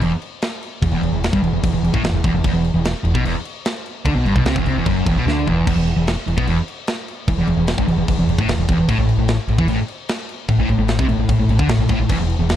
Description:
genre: heavy metal.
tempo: 149 BPM.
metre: 4/4.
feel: straight.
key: E minor.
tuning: A4 = 440 Hz.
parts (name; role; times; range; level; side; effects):
sludgy distorted guitar; riff; 0.0-12.6 s; E2 to E3; -18 LUFS; equal; overdrive.
mellow fretless electric bass; bass; 0.0-12.6 s; E1 to E2; -21 LUFS; equal; none.
tight metal drum kit; drums; 0.0-12.6 s; crash cymbal, kick drum, snare drum, toms; -23 LUFS; equal; none.
room: little or no reverb.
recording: dark, warm production.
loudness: -16 LUFS.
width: side -11 dB against mid.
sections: 0.0-5.7 A section; 5.7-12.6 B section.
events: drum fill 5.3-5.7.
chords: 0.0 E5; 5.7 N.C.; 8.9 A5.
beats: 0.02 0.42 | 0.83 1.23 1.63 2.04 | 2.44 2.85 3.25 3.65 | 4.06 4.46 4.86 5.27 | 5.67 6.07 6.47 6.88 | 7.28 7.68 8.08 8.48 | 8.89 9.29 9.69 10.09 | 10.49 10.89 11.30 11.70 | 12.10 12.50.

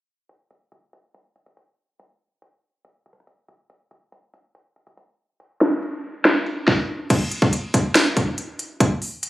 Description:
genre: hip hop.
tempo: 141 BPM.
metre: 4/4.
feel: half-time.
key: none.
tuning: none.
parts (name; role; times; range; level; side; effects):
trap drum kit; drums; 0.3-9.3 s; crash cymbal, hi-hat, kick drum, snare drum; -18 LUFS; equal; overdrive.
room: wet plate reverb, RT60 1.7 s, digital ambience.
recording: recorded on a phone in the room, studio ambience, compression, low-pass filter.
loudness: -18 LUFS.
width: side -16 dB against mid.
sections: 0.3-7.1 A section; 7.1-9.3 B section.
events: none.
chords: none.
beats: | 0.29 0.72 1.15 1.57 | 2.00 2.42 2.85 3.27 | 3.70 4.12 4.55 4.97 | 5.40 5.83 6.25 6.68 | 7.10 7.53 7.95 8.38 | 8.80 9.23.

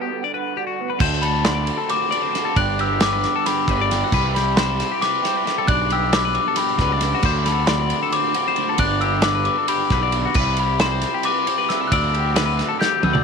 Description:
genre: math rock and midwest emo.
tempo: 270 BPM (eighths).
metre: 7/8.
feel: straight.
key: G major.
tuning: A4 = 441 Hz.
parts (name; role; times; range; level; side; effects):
electric guitar through a small old amp; accompaniment; 0.0-2.6 s; D2 to F#4; -30 LUFS; right 15 dB; ensemble chorus.
twelve-string electric guitar; arpeggios; 0.0-13.2 s; F#4 to D5; -25 LUFS; left 13 dB; none.
overdriven electric guitar; riff; 1.0-13.2 s; G2 to A4; -27 LUFS; right 18 dB; none.
fuzz fingered electric bass; bass; 1.0-13.2 s; G1 to D2; -23 LUFS; right 1 dB; overdrive.
loose indie drum kit; drums; 1.0-13.2 s; crash cymbal, kick drum, ride cymbal, snare drum, toms; -23 LUFS; right 2 dB; none.
glockenspiel with soft plastic mallets; melody; 1.2-13.2 s; B5 to G6; -22 LUFS; left 5 dB; none.
room: little or no reverb.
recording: 1960s-style stereo with parts hard left and right.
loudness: -17 LUFS.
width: side -5 dB against mid.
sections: 0.0-1.0 A section; 1.0-13.2 B section.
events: break 0.0-1.0; drum fill 12.8-13.2.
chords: 0.0 Gmaj7; 1.0 D7; 2.6 G; 4.1 Cmaj7; 5.7 G/B; 7.2 D7; 8.8 G; 10.4 Cmaj7; 11.9 D9sus4.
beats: 0.11 0.34 0.56 0.78 | 1.01 1.23 1.45 1.68 1.90 2.12 2.34 | 2.57 2.79 3.01 3.23 3.46 3.68 3.90 | 4.12 4.35 4.57 4.79 5.01 5.24 5.46 | 5.68 5.91 6.13 6.35 6.57 6.79 7.02 | 7.24 7.46 7.68 7.91 8.13 8.35 8.57 | 8.80 9.02 9.24 9.47 9.69 9.91 10.13 | 10.36 10.58 10.80 11.02 11.25 11.47 11.69 | 11.91 12.14 12.36 12.58 12.81 13.03.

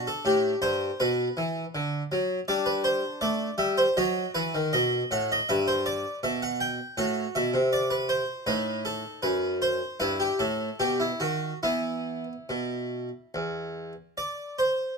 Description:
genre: classical, baroque-style suite movement for harpsichord.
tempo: 79 BPM.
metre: 4/4.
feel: uneven beats, rubato.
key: E minor.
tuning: A4 = 439 Hz.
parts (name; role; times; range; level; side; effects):
harpsichord; solo; 0.0-14.9 s; E2 to G5; -25 LUFS; equal; none.
room: moderate large studio reverb, RT60 0.9 s.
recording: minimal, uncompressed stereo recording.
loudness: -25 LUFS.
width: side -4 dB against mid.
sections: 0.0-15.0 A section.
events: none.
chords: 0.0 G; 2.5 G5; 4.0 B7; 5.5 G6; 7.0 F#dim/A; 8.5 F#dim7; 10.0 Em/G; 10.8 B; 11.6 E5.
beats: 0.26 1.01 1.74 | 2.48 3.22 3.96 4.73 | 5.49 6.24 6.98 7.73 | 8.48 9.24 10.01 10.79 | 11.63 12.49 13.33 14.16.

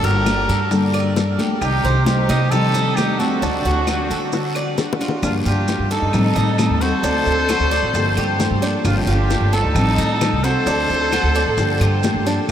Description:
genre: latin, Cuban son and guajira.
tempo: 133 BPM.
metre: 4/4.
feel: straight.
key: G minor.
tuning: A4 = 439 Hz.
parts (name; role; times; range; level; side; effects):
warm trumpet; melody; 0.0-12.5 s; F4 to C5; -22 LUFS; equal; none.
warm studio violin section; second line; 0.0-12.5 s; D4 to A4; -26 LUFS; equal; none.
nylon-string guitar; accompaniment; 0.0-12.5 s; C3 to A4; -24 LUFS; left 2 dB; none.
Cuban tres; arpeggios; 0.0-12.5 s; D4 to Eb5; -26 LUFS; right 3 dB; none.
upright bass; bass; 0.0-12.5 s; G1 to D3; -20 LUFS; equal; none.
bongos; percussion; 0.0-12.5 s; none; -29 LUFS; left 5 dB; none.
congas; percussion; 0.0-12.5 s; none; -28 LUFS; left 2 dB; none.
claves; percussion; 0.3-12.5 s; none; -37 LUFS; right 2 dB; none.
guiro; percussion; 0.3-12.5 s; none; -34 LUFS; left 3 dB; none.
maracas; percussion; 0.3-12.5 s; none; -37 LUFS; right 7 dB; none.
room: wet huge ambient reverb, RT60 8.2 s.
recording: in a vast, echoing space.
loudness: -16 LUFS.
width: side -10 dB against mid.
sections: 0.0-5.2 A section; 5.2-12.5 B section.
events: drum fill 4.3-5.2.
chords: 0.0 Gmadd9; 1.6 Cm; 3.4 D; 5.2 Gm7; 6.1 Am7b5; 7.0 D7; 7.9 Gm7; 9.8 Am7b5; 10.7 D7; 11.6 Gm7.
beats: 0.27 0.72 1.17 | 1.62 2.07 2.52 2.97 | 3.42 3.87 4.33 4.78 | 5.23 5.68 6.13 6.58 | 7.04 7.49 7.94 8.40 | 8.85 9.30 9.76 10.21 | 10.67 11.12 11.58 12.03 | 12.49.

